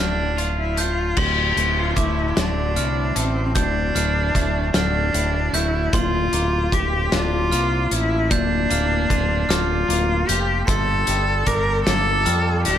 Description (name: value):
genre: post-rock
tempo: 50 BPM (dotted quarters)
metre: 6/8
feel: straight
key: D minor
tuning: A4 = 440 Hz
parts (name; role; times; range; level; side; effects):
- clear cello; melody; 0.0-12.8 s; C4 to Bb4; -22 LUFS; left 1 dB; analog delay
- glockenspiel with hard plastic mallets; arpeggios; 0.0-12.8 s; C6 to G6; -29 LUFS; right 8 dB; analog delay
- twangy electric guitar; arpeggios; 0.0-12.8 s; D2 to F4; -28 LUFS; left 4 dB; wide subtle chorus, analog delay
- growling fingered electric bass; bass; 0.0-12.8 s; D1 to F2; -23 LUFS; equal; overdrive
- loose indie drum kit; drums; 0.4-12.8 s; crash cymbal, hi-hat, kick drum, snare drum; -24 LUFS; left 1 dB; none
room: light reverb, studio reverb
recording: none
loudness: -18 LUFS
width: side -10 dB against mid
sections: 0.0-1.2 A section; 1.2-12.8 B section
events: none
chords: 0.0 Dm; 5.9 Bb/D; 10.7 Gmadd9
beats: | 1.18 2.37 | 3.56 4.74 | 5.93 7.12 | 8.31 9.49 | 10.68 11.87